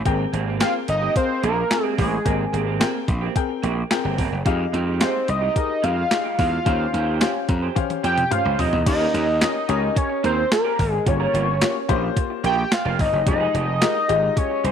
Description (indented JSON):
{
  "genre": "early-eighties boogie funk",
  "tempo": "109 BPM",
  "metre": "4/4",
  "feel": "straight",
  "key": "unclear",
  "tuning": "A4 = 441 Hz",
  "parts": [
    { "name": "dark baby grand piano", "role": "accompaniment", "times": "0.1-14.6 s", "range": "Ab3 to Bb5", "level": "-27 LUFS", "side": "left 13 dB", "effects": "none" },
    { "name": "electric guitar through a small old amp", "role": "riff", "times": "0.1-14.7 s", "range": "Ab3 to C5", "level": "-30 LUFS", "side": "right 13 dB", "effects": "analog chorus" },
    { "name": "gritty slap bass", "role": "bass", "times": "0.1-14.7 s", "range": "F1 to F2", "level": "-24 LUFS", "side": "equal", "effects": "overdrive" },
    { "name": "clean 12-bit digital drum machine", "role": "drums", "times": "0.1-14.7 s", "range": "crash cymbal, handclaps, hi-hat, kick drum, snare drum, toms", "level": "-23 LUFS", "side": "equal", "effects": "overdrive" },
    { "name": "fat analog lead", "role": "melody", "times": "0.6-14.7 s", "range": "Ab4 to G5", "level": "-22 LUFS", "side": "equal", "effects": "chorus, phaser" }
  ],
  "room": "light reverb, digital ambience",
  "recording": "1960s-style stereo with parts hard left and right",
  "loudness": "-19 LUFS",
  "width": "side -8 dB against mid",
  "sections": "0.0-8.9 A section; 8.9-14.7 B section",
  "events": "grand piano fill 7.2-8.9; drum fill 7.8-8.9",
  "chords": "0.1 Abmaj9; 4.5 Fm9; 6.7 Eb13; 8.9 Eb7; 11.1 Gm7b5; 13.3 Fm9"
}